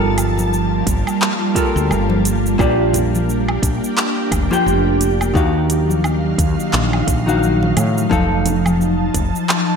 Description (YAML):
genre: sunset chillout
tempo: 87 BPM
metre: 4/4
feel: swing 58% on 16ths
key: Bb major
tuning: A4 = 440 Hz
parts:
  - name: hollow-body jazz guitar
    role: accompaniment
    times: 0.0-9.8 s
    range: Eb3 to G5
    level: -20 LUFS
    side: equal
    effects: auto-pan, ping-pong delay
  - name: ethereal airy pad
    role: sustained chords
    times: 0.0-9.8 s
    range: F3 to A5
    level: -20 LUFS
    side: equal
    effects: ensemble chorus, built-in reverb
  - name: woody fretless electric bass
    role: bass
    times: 0.0-9.3 s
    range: F1 to A2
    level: -19 LUFS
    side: equal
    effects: none
  - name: smooth R&B drum kit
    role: drums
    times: 0.2-9.7 s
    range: handclaps, hi-hat, shaker, woodblock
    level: -22 LUFS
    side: right 1 dB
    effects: overdrive
  - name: congas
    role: percussion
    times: 0.4-8.8 s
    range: none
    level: -25 LUFS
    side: left 2 dB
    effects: none
  - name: electronic kick drum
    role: drums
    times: 0.9-9.3 s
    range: none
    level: -21 LUFS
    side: equal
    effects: none
room: moderate lush hall reverb, RT60 1.5 s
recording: bright 1980s-style digital production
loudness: -14 LUFS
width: side -6 dB against mid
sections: 0.0-9.8 A section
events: none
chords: 0.0 Gm9; 2.6 Bb6; 5.4 Ebmadd9; 8.1 F7